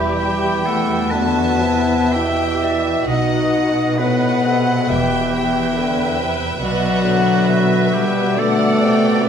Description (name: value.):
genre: classical, slow romantic movement for symphony orchestra.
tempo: 56-71 BPM.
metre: 4/4.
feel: rubato.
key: E minor.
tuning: A4 = 440 Hz.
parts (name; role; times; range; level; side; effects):
rich studio violin section; melody; 0.0-9.3 s; D5 to A5; -25 LUFS; left 2 dB; none.
clear oboe; second line; 0.0-9.3 s; F#4 to E5; -26 LUFS; right 2 dB; none.
clear studio violin section; second line; 0.0-9.3 s; D5 to G5; -28 LUFS; right 1 dB; none.
mellow hollow silver concert flute; second line; 0.0-9.2 s; F#5 to B5; -28 LUFS; left 2 dB; none.
warm clarinet; second line; 0.0-9.3 s; B4 to G5; -27 LUFS; left 1 dB; none.
rich studio viola section; accompaniment; 0.0-9.3 s; E4 to D5; -27 LUFS; right 3 dB; none.
warm bassoon; accompaniment; 0.0-9.3 s; A2 to E3; -26 LUFS; right 3 dB; none.
mellow French horn section; sustained chords; 0.0-9.3 s; F#3 to E4; -18 LUFS; left 3 dB; none.
rich studio cello section; bass; 0.0-9.3 s; E2 to B2; -24 LUFS; right 4 dB; none.
rich studio double bass section; bass; 0.0-7.4 s; E1 to B1; -27 LUFS; right 4 dB; none.
timpani; percussion; 0.0-0.6 s; E2; -38 LUFS; equal; none.
room: wet scoring stage reverb, RT60 1.7 s.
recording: none.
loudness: -15 LUFS.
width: side -8 dB against mid.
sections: 0.0-9.3 A section.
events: none.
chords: 0.0 Em; 3.1 B7b9; 4.9 Em; 6.6 Bm.